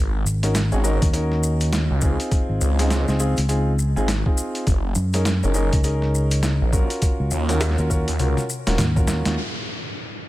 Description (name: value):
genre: glitch hop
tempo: 102 BPM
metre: 4/4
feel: swing 61% on 16ths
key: Eb dorian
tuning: A4 = 440 Hz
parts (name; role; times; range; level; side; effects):
- phased detuned saw bass; bass; 0.0-8.8 s; Eb1 to Eb2; -21 LUFS; equal; phaser, overdrive
- fingered electric bass; bass; 0.3-9.4 s; Ab1 to Gb2; -21 LUFS; equal; none
- maracas; percussion; 0.3-9.3 s; none; -33 LUFS; left 3 dB; none
- warm grand piano; stabs; 0.4-9.4 s; C4 to Bb4; -26 LUFS; equal; sidechain pumping, ping-pong delay
- boom bap sampler-style drum kit; drums; 0.4-9.3 s; hi-hat, snare drum, toms; -27 LUFS; equal; overdrive, low-pass filter on hats, small room reverb, low-pass filter on snare, low-pass filter on toms
- electronic kick drum; drums; 1.0-9.1 s; none; -20 LUFS; equal; overdrive, small room reverb
- downlifter; sound effects; 9.4-10.3 s; none; -29 LUFS; left 1 dB; none
room: little or no reverb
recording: none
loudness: -18 LUFS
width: side -16 dB against mid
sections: 0.0-9.4 A section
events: drum fill 8.2-9.4; band accent 9.2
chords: 0.0 Ab7sus4; 2.3 Dbmaj7; 4.7 Gb6; 7.0 Ebm7; 9.4 N.C.